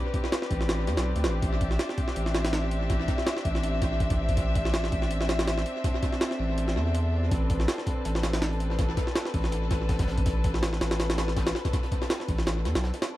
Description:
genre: drum and bass, jungle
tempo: 163 BPM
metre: 4/4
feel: swing 54% on 16ths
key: A minor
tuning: A4 = 440 Hz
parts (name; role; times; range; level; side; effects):
- rich chamber string section; sustained chords; 0.0-13.2 s; C4 to E5; -32 LUFS; left 1 dB; vintage 12-bit sampler grit
- jungle sampler-style drum kit; drums; 0.1-13.1 s; hi-hat, kick drum, snare drum; -28 LUFS; equal; tape echo
- saturated sub bass; bass; 0.5-12.9 s; A1 to E2; -28 LUFS; equal; none
- crunchy breakbeat drum kit; drums; 7.3-13.1 s; hi-hat, snare drum; -45 LUFS; left 1 dB; none
room: small room reverb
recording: echo-heavy mix, vinyl crackle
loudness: -25 LUFS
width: side -15 dB against mid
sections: 0.0-13.2 A section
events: kick drops out 6.6-7.3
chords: 0.0 Am11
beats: 0.32 0.69 1.06 | 1.43 1.79 2.16 2.53 | 2.90 3.27 3.63 4.00 | 4.37 4.74 5.11 5.47 | 5.84 6.21 6.58 6.95 | 7.32 7.68 8.05 8.42 | 8.79 9.15 9.52 9.89 | 10.26 10.63 11.00 11.36 | 11.73 12.10 12.47 12.84

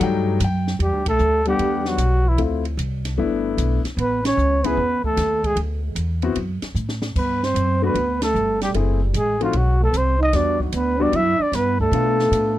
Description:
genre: jazz, small-group swing and bop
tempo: 151 BPM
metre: 4/4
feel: swing 67% on 8ths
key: E minor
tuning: A4 = 440 Hz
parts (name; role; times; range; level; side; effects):
- warm concert grand piano; accompaniment; 0.0-12.5 s; F#3 to G5; -23 LUFS; left 7 dB; none
- upright bass; bass; 0.0-12.6 s; F#1 to B2; -22 LUFS; equal; none
- open jazz drum kit; drums; 0.0-12.4 s; crash cymbal, hi-hat, kick drum, ride cymbal, snare drum; -29 LUFS; equal; none
- breathy trumpet; melody; 0.8-12.6 s; E4 to E5; -22 LUFS; left 1 dB; none
- breathy trombone; second line; 0.8-12.6 s; E3 to E4; -25 LUFS; right 5 dB; tape echo
room: little or no reverb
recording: dry, close 1970s-style studio recording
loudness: -18 LUFS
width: side -14 dB against mid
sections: 0.8-12.6 A section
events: band accent 1.0, 4.2, 8.2; drum fill 6.8-7.2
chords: 0.0 B7b13 (rootless); 0.8 Em9; 2.4 Dm7; 3.2 Gadd9; 4.0 Aadd9; 5.6 Dadd9; 7.2 Gmaj7; 8.7 F#m7b5; 9.5 B7b9; 10.3 Em9; 11.9 Bm7b5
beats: 0.01 0.41 | 0.80 1.20 1.60 1.99 | 2.39 2.79 3.18 3.58 | 3.98 4.38 4.77 5.17 | 5.57 5.96 6.36 6.76 | 7.16 7.55 7.95 8.35 | 8.75 9.14 9.54 9.94 | 10.34 10.73 11.13 11.53 | 11.92 12.32

